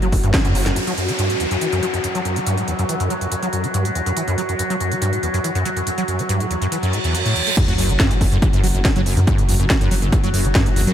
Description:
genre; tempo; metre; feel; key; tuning
driving peak-time techno; 141 BPM; 4/4; straight; F# phrygian; A4 = 441 Hz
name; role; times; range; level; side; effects
acid bass, saw; riff; 0.0-10.9 s; E2 to A3; -22 LUFS; equal; ensemble chorus, sidechain pumping, ping-pong delay
detuned saw bass; bass; 0.0-0.7, 7.7-10.9 s; F#1 to F#2; -20 LUFS; equal; sidechain pumping
overtone-sweeping drone; drone; 0.0-10.9 s; F#3 to F#4; -25 LUFS; equal; chorus, built-in reverb, sidechain pumping
techno drum kit; drums; 0.0-10.9 s; crash cymbal, hi-hat, snare drum; -25 LUFS; equal; sidechain pumping on hats, sidechain pumping on cymbals
electronic kick drum; drums; 0.1-0.4, 7.6-10.6 s; none; -18 LUFS; equal; none
downlifter, reverse cymbal and sub drop; sound effects; 0.8-9.3 s; none; -27 LUFS; right 1 dB; none
room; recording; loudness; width
moderate huge ambient reverb, RT60 8.7 s; dreamy mix soaked in reverb; -16 LUFS; side -10 dB against mid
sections
0.8-7.6 A section; 7.6-10.9 B section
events
band accent 0.3; reverse cymbal 6.9-7.6; drop 7.6-10.9; impact 7.6-9.3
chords
none

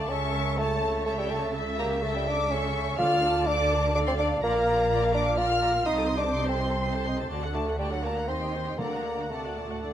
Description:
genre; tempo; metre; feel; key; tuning
quick classical-period movement for symphony orchestra; 124 BPM; 3/4; straight; unclear; A4 = 440 Hz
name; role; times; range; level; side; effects
warm studio violin section; melody; 0.0-9.9 s; D5 to C6; -38 LUFS; left 4 dB; none
rich chamber violin section; second line; 0.0-9.9 s; F#5 to F6; -34 LUFS; left 3 dB; none
mellow bassoon; accompaniment; 0.0-9.9 s; F#3 to F4; -27 LUFS; equal; none
rich chamber viola section; accompaniment; 0.0-9.9 s; Eb4 to F#5; -34 LUFS; left 1 dB; none
dark chamber double bass section; bass; 0.0-9.9 s; Bb1 to Eb2; -32 LUFS; right 2 dB; none
warm chamber cello section; bass; 0.0-9.9 s; A2 to Eb3; -36 LUFS; right 2 dB; none
timpani; percussion; 3.0-3.7, 8.8-9.5 s; D3; -40 LUFS; left 2 dB; none
room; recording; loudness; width
moderate recital hall reverb, RT60 1.4 s; close, detailed microphones; -24 LUFS; side -10 dB against mid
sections
0.0-9.9 A section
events
none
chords
0.1 A/C#; 1.5 A7/C#; 3.0 Dm; 4.4 Bb; 5.9 Adim/C; 7.3 D; 8.3 Cm/Eb; 8.8 D

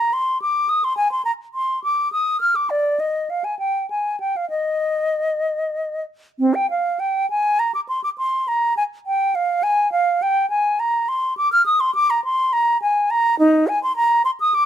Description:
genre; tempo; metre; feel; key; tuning
classical, baroque-style fantasia for unaccompanied flute; 69 BPM (dotted quarters); 6/8; rubato; Eb major; A4 = 440 Hz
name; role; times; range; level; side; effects
mellow silver concert flute; solo; 0.0-14.7 s; C4 to F6; -17 LUFS; equal; none
room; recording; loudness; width
light reverb; none; -18 LUFS; side -10 dB against mid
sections
0.0-6.4 A section; 6.4-14.7 A section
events
none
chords
none

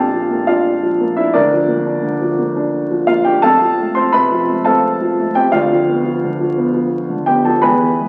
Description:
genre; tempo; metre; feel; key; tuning
classical, romantic character piece for solo piano; 86 BPM; 3/4; rubato; unclear; A4 = 439 Hz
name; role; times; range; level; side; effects
warm baby grand piano; solo; 0.0-8.1 s; Bb1 to C6; -15 LUFS; equal; none
room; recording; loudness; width
wet recital hall reverb, RT60 1.7 s; very old 78 rpm record, vinyl crackle; -15 LUFS; mono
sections
0.0-8.1 A section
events
none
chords
0.0 Bb; 1.3 Bb/D; 3.4 F; 5.5 Bdim/D

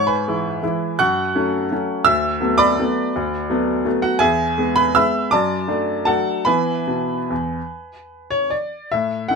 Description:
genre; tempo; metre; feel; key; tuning
classical, piano waltz; 144-180 BPM; 3/4; rubato; unclear; A4 = 445 Hz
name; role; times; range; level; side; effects
clear upright piano; solo; 0.0-9.4 s; D2 to F#6; -17 LUFS; equal; none
room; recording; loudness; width
little or no reverb; close, detailed microphones; -17 LUFS; side -4 dB against mid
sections
0.0-8.9 A section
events
none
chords
0.0 E/G#; 1.0 F#m; 2.1 Bm7/D; 4.2 E; 5.3 D/F#; 6.5 E

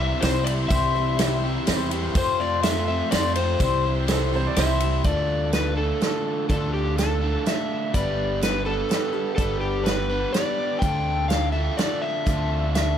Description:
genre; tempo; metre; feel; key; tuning
folk rock and heartland rock; 124 BPM; 3/4; straight; C major; A4 = 440 Hz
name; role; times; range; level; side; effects
overdriven slide guitar; melody; 0.0-13.0 s; G4 to G5; -27 LUFS; left 2 dB; analog delay
picked twelve-string acoustic guitar; accompaniment; 0.0-13.0 s; C3 to C5; -31 LUFS; left 6 dB; none
rich symphonic string section; sustained chords; 0.0-5.0 s; G4 to C6; -36 LUFS; right 1 dB; none
overdriven electric guitar; riff; 0.0-13.0 s; F2 to B4; -28 LUFS; right 2 dB; none
upright bass; bass; 0.0-13.0 s; G1 to F2; -26 LUFS; equal; none
natural country drum kit; drums; 0.2-12.9 s; hi-hat, kick drum, ride cymbal, snare drum; -26 LUFS; right 1 dB; none
tambourine; percussion; 0.2-4.7 s; none; -39 LUFS; right 7 dB; none
clear upright piano; second line; 4.1-4.9 s; E4 to D5; -30 LUFS; right 8 dB; none
room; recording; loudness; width
studio reverb; none; -21 LUFS; side -9 dB against mid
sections
0.0-5.0 A section; 5.0-13.0 B section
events
none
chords
0.0 C; 2.2 F; 3.6 C; 5.0 Dm; 7.9 G; 10.8 Dmadd9

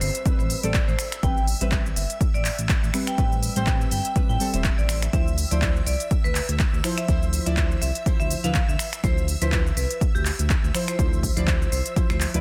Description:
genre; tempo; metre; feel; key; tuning
deep house; 123 BPM; 4/4; swing 56% on 16ths; unclear; A4 = 441 Hz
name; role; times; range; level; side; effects
vibraphone with hard mallets; melody; 0.0-12.4 s; G4 to G5; -34 LUFS; equal; dub echo
deep mellow chord stab; stabs; 0.0-12.4 s; F3 to D5; -32 LUFS; equal; chorus, sidechain pumping
smooth synth bass; bass; 0.0-12.4 s; E1 to A2; -28 LUFS; equal; sidechain pumping
deep house drum kit; drums; 0.0-12.4 s; finger snaps, handclaps, hi-hat, shaker; -31 LUFS; equal; none
downlifter; sound effects; 0.0-1.2 s; none; -54 LUFS; equal; none
string machine, violins; texture; 0.0-12.4 s; E5 to E6; -42 LUFS; equal; ensemble chorus
electronic kick drum; drums; 0.3-12.1 s; none; -26 LUFS; equal; none
room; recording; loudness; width
little or no reverb; dense, heavily limited modern master; -23 LUFS; mono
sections
0.0-12.4 A section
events
none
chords
0.0 Am9; 5.1 Dm9

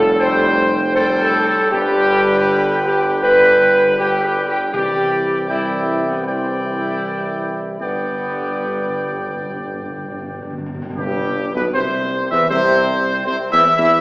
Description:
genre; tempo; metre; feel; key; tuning
classical; 78 BPM; 4/4; straight; C major; A4 = 441 Hz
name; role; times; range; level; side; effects
bright trumpet section; melody; 0.0-14.0 s; G4 to G5; -19 LUFS; equal; none
bright trombone section; sustained chords; 0.0-14.0 s; G2 to G3; -25 LUFS; equal; none
warm French horn section; sustained chords; 0.0-14.0 s; G3 to C5; -18 LUFS; equal; none
warm tuba; bass; 0.0-14.0 s; F1 to E2; -23 LUFS; equal; none
timpani; percussion; 4.7-12.1 s; G2 to C3; -32 LUFS; equal; none
room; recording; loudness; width
wet scoring stage reverb, RT60 1.7 s; heard from further back in the room, AM radio sound; -14 LUFS; side -22 dB against mid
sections
0.0-11.0 A section; 11.0-14.0 B section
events
timpani fill 7.8-11.0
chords
0.0 Fadd9; 1.7 G; 4.7 Cadd9; 7.8 G; 11.0 C/G

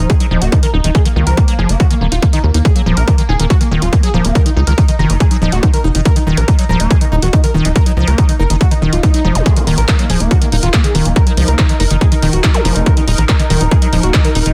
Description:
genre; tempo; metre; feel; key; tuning
psychedelic trance; 141 BPM; 4/4; straight; Eb minor; A4 = 440 Hz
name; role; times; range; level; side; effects
unison lead; melody; 0.0-14.5 s; Bb3 to Bb4; -24 LUFS; equal; phaser, sidechain pumping, dub echo
liquid acid bass; riff; 0.0-14.5 s; Db3 to Eb4; -21 LUFS; equal; chorus, cassette tape, sidechain pumping, delay
tight sequencer bass; bass; 0.0-14.5 s; Eb1 to Eb2; -16 LUFS; equal; none
big-room dance drum kit; drums; 0.1-14.5 s; handclaps, hi-hat; -24 LUFS; equal; none
electronic kick drum; drums; 0.1-14.2 s; none; -14 LUFS; equal; overdrive
swell and zap; sound effects; 8.7-9.5, 12.5-12.7 s; none; -27 LUFS; equal; none
pulsing gated texture; sustained chords; 9.5-14.5 s; Eb4 to Bb4; -26 LUFS; equal; chorus, built-in reverb, sidechain pumping
room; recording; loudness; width
digital ambience; dense, heavily limited modern master; -12 LUFS; mono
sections
0.0-14.5 A section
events
swell 8.7-9.5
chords
0.0 Eb5

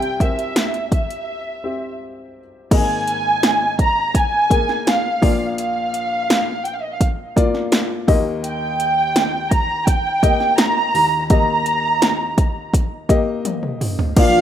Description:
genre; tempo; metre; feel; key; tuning
piano-driven pop; 84 BPM; 4/4; straight; unclear; A4 = 442 Hz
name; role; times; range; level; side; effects
dark studio violin section; melody; 0.0-14.4 s; Eb5 to Bb5; -19 LUFS; right 2 dB; none
warm upright piano; accompaniment; 0.0-14.4 s; Ab1 to E5; -24 LUFS; left 4 dB; none
deep house drum kit; drums; 0.0-14.3 s; crash cymbal, hi-hat, kick drum, snare drum, toms; -17 LUFS; equal; overdrive
dark French horn section; second line; 14.2-14.4 s; F3 to F4; -17 LUFS; left 4 dB; none
room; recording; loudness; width
small room ambience; rough home demo mix; -16 LUFS; side -10 dB against mid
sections
0.0-2.7 A section; 2.7-14.2 B section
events
break 1.3-2.7; drum fill 13.4-14.2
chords
0.0 C; 2.7 Absus2; 5.2 Bb; 8.1 Eb

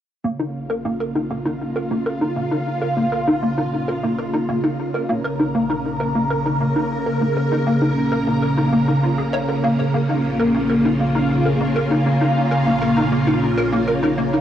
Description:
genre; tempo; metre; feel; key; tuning
ambient, sequencer-driven space music; 99 BPM; 4/4; straight; Bb minor; A4 = 440 Hz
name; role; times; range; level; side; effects
phased string machine; sustained chords; 0.2-14.4 s; Db3 to Bb4; -19 LUFS; equal; ensemble chorus, phaser, shimmer reverb
hollow square pluck; riff; 0.2-14.4 s; Bb3 to Db5; -22 LUFS; equal; ensemble chorus, ping-pong delay, shimmer reverb
fat analog bass; bass; 0.2-14.4 s; Bb1; -33 LUFS; equal; none
room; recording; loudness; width
wet booth ambience, RT60 0.3 s; home recording on cassette; -17 LUFS; side -10 dB against mid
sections
0.2-14.4 A section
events
fade-in on analog synth bass 0.2-14.4; filter sweep on synth arpeggio sound 0.2-14.4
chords
0.2 Bbm

